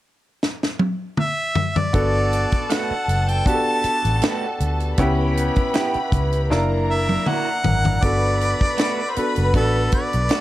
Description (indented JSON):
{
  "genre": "lush 1970s-style soul",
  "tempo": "79 BPM",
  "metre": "4/4",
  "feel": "swing 54% on 16ths",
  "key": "G major",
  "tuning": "A4 = 439 Hz",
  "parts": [
    { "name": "tight funk drum kit", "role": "drums", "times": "0.4-10.4 s", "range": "hi-hat, kick drum, snare drum, toms", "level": "-22 LUFS", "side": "equal", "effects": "none" },
    { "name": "clear harmonica", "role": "melody", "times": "1.2-10.4 s", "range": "A4 to A5", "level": "-23 LUFS", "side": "equal", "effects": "none" },
    { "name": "warm studio string section", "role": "second line", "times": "1.9-10.4 s", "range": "A4 to B5", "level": "-28 LUFS", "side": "left 1 dB", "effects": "none" },
    { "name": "clear grand piano", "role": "accompaniment", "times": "1.9-10.4 s", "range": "A#3 to A#4", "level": "-24 LUFS", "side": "equal", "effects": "none" },
    { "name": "vintage muted fingered electric bass", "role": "bass", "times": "1.9-10.3 s", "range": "F#1 to D2", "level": "-21 LUFS", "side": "equal", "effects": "none" },
    { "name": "electric guitar through a small old amp", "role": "riff", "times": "2.7-10.4 s", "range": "A3 to G4", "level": "-29 LUFS", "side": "right 6 dB", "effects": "none" }
  ],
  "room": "small room ambience",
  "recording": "none",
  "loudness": "-18 LUFS",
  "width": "side -15 dB against mid",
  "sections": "0.0-1.9 A section; 1.9-8.0 B section; 8.0-10.4 C section",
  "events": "drum fill 0.4-1.9, 6.5-8.0",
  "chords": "0.0 N.C.; 1.9 Gmaj9; 5.0 C#m7b5; 6.5 F#aug7; 8.0 Gmaj9",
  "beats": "0.41 1.18 | 1.94 2.70 3.46 4.22 | 4.98 5.74 6.50 7.26 | 8.02 8.78 9.54 10.31"
}